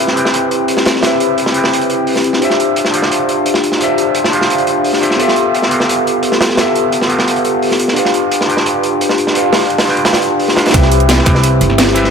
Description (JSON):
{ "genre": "liquid drum and bass", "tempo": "173 BPM", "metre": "4/4", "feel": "straight", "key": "C major", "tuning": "A4 = 444 Hz", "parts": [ { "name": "overdriven tine electric piano", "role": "accompaniment", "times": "0.0-12.1 s", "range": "B3 to G5", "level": "-12 LUFS", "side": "left 1 dB", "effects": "phaser, dub echo" }, { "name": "crunchy breakbeat drum kit", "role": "drums", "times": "0.1-12.1 s", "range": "hi-hat, snare drum", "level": "-16 LUFS", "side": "right 1 dB", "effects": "high-pass filter on hats, high-pass filter on snare, high-pass filter on room" }, { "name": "upright bass", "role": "bass", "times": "10.7-12.1 s", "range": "G1 to C2", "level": "-13 LUFS", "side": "right 1 dB", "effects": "none" }, { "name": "drum and bass drum kit", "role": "drums", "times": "10.7-12.0 s", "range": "hi-hat, snare drum", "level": "-16 LUFS", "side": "equal", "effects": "overdrive" }, { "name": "electronic kick drum", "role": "drums", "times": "10.7-11.3 s", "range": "none", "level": "-12 LUFS", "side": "right 1 dB", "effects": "overdrive" } ], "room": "moderate lush hall reverb, RT60 2.3 s", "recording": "none", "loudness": "-10 LUFS", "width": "side -6 dB against mid", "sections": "0.0-10.7 A section; 10.7-12.1 B section", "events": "drop 10.7-12.1", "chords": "0.0 Cmaj7; 2.4 Dm11; 5.2 Fmaj9#11; 8.0 G7; 10.7 Cmaj7" }